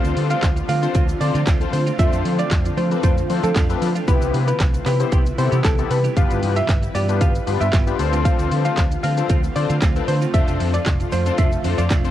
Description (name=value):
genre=dance-pop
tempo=115 BPM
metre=4/4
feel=straight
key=unclear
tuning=A4 = 440 Hz
part: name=big bright polysynth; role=accompaniment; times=0.0-12.1 s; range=B3 to D5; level=-25 LUFS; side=left 9 dB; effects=sidechain pumping, cassette tape
part: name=shimmering ambient pad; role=sustained chords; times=0.0-12.1 s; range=C3 to B4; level=-28 LUFS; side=right 1 dB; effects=chorus, built-in reverb, sidechain pumping, cassette tape
part: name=semi-hollow electric guitar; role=riff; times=0.0-12.1 s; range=A3 to G4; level=-29 LUFS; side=right 11 dB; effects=wide subtle chorus, cassette tape
part: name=vintage muted fingered electric bass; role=bass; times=0.0-12.1 s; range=F1 to F3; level=-22 LUFS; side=equal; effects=sidechain pumping
part: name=pop drum kit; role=drums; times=0.0-12.1 s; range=handclaps, hi-hat, kick drum, shaker, snare drum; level=-20 LUFS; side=equal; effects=cassette tape
part: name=tube shaker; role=percussion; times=0.0-12.1 s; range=none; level=-47 LUFS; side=left 13 dB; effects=none
part: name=downlifter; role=sound effects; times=0.0-2.0 s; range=none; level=barely audible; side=none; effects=none
part: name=hollow square pluck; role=melody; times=0.3-11.9 s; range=A4 to F5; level=-26 LUFS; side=equal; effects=chorus, cassette tape, tape echo
room=light reverb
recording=home recording on cassette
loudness=-16 LUFS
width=side -12 dB against mid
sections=0.0-12.1 A section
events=none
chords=0.0 Dm7; 2.0 F6; 4.1 Cmaj7; 6.2 G7; 8.0 Dm7; 10.3 F6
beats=0.43 0.95 1.47 | 1.99 2.51 3.04 3.56 | 4.08 4.60 5.12 5.64 | 6.17 6.69 7.21 7.73 | 8.25 8.78 9.30 9.82 | 10.34 10.86 11.38 11.90